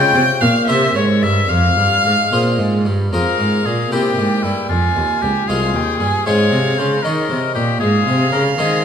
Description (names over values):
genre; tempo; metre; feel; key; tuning
classical, baroque-style sonata movement with continuo; 77 BPM (dotted quarters); 6/8; straight; F minor; A4 = 442 Hz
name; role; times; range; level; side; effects
bright oboe; melody; 0.0-8.8 s; E4 to G5; -19 LUFS; left 8 dB; none
warm violin; second line; 0.0-8.8 s; Db5 to Ab5; -21 LUFS; right 6 dB; none
harpsichord; accompaniment; 0.0-8.8 s; C2 to Db5; -20 LUFS; left 1 dB; none
clear cello; bass; 0.0-8.8 s; C2 to Eb3; -18 LUFS; right 2 dB; none
room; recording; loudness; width
moderate recital hall reverb, RT60 1.7 s; none; -14 LUFS; side -8 dB against mid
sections
0.0-3.1 A section; 3.1-8.8 A section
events
none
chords
0.0 Db; 0.7 C5; 1.5 Fm; 3.9 C7; 4.7 Fm; 6.3 Ab; 7.0 Eb5; 7.8 Ab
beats
0.68 | 1.49 2.31 | 3.12 3.92 | 4.70 5.48 | 6.26 7.04 | 7.81 8.59